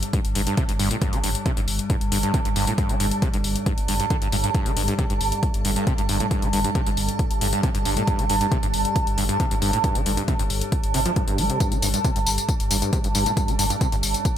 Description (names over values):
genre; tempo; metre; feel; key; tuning
driving peak-time techno; 136 BPM; 4/4; straight; unclear; A4 = 445 Hz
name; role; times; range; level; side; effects
saturated sub bass; bass; 0.0-14.1 s; G1; -27 LUFS; equal; tube saturation, sidechain pumping, low-pass filter
metallic inharmonic drone; drone; 0.0-14.4 s; G2 to G3; -30 LUFS; left 1 dB; chorus, built-in reverb, sidechain pumping
electronic hi-hat and tambourine; drums; 0.0-14.3 s; none; -28 LUFS; left 5 dB; sidechain pumping on hats, sidechain pumping on cymbals, sidechain pumping on perc
granular cloud pad; texture; 0.0-14.4 s; A5; -28 LUFS; right 4 dB; built-in reverb, lush chorus, sidechain pumping
overdriven acid bass; riff; 0.1-14.0 s; G2 to G3; -27 LUFS; equal; wide subtle chorus, sidechain pumping, ping-pong delay
electronic kick drum; drums; 0.1-14.3 s; none; -24 LUFS; equal; none
room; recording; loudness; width
moderate plate reverb, RT60 1.1 s, digital ambience; bright 1980s-style digital production; -20 LUFS; side -10 dB against mid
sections
0.0-14.4 A section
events
none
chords
none